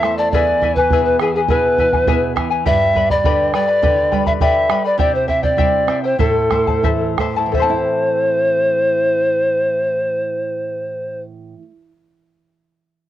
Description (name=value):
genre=andean folk, Andean ensemble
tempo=82-103 BPM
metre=2/4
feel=straight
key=A minor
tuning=A4 = 441 Hz
part: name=bright polished pan flute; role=melody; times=0.0-11.2 s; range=G#4 to E5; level=-16 LUFS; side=equal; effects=cassette tape
part: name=charango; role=accompaniment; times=0.0-11.8 s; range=E4 to B5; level=-20 LUFS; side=left 8 dB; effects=cassette tape
part: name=nylon-string guitar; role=accompaniment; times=0.0-11.9 s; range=E2 to E4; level=-24 LUFS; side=right 6 dB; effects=cassette tape
part: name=bombo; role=percussion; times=0.0-7.9 s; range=none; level=-21 LUFS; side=right 2 dB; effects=none
room=light reverb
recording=home recording on cassette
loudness=-14 LUFS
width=side -12 dB against mid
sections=0.0-7.5 A section; 7.5-10.4 B section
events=slowing down 5.0-7.5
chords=0.3 E; 2.7 G; 5.0 C; 6.2 Am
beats=| 0.33 0.91 | 1.49 2.08 | 2.66 3.24 | 3.82 4.41 | 4.99 5.58 | 6.19 6.83 | 7.53 8.26 | 8.99 9.71